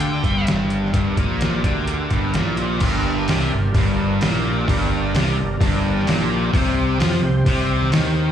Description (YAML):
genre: blues rock power trio and southern rock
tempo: 128 BPM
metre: 4/4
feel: straight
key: G minor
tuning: A4 = 441 Hz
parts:
  - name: octave-fuzz lead guitar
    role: melody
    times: 0.0-0.5 s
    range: G5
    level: -28 LUFS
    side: equal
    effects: wah, distortion, slapback echo, analog delay
  - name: overdriven tonewheel organ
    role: sustained chords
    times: 0.0-8.3 s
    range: C4 to D5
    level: -28 LUFS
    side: right 4 dB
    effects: chorus vibrato, slow rotary speaker
  - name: overdriven electric guitar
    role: riff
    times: 0.0-8.3 s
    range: G2 to F3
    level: -21 LUFS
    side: left 1 dB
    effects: none
  - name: fuzz fingered electric bass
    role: bass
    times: 0.0-8.3 s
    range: G1 to F2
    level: -23 LUFS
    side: equal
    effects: overdrive
  - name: trip hop sampler-style drum kit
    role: drums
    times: 0.0-8.0 s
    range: crash cymbal, hi-hat, kick drum, snare drum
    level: -22 LUFS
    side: equal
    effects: overdrive
room: little or no reverb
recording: live gig heard through the venue's PA, club reverb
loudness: -17 LUFS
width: side -9 dB against mid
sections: 0.0-2.8 A section; 2.8-8.3 B section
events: none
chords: 0.0 Gm; 6.5 C5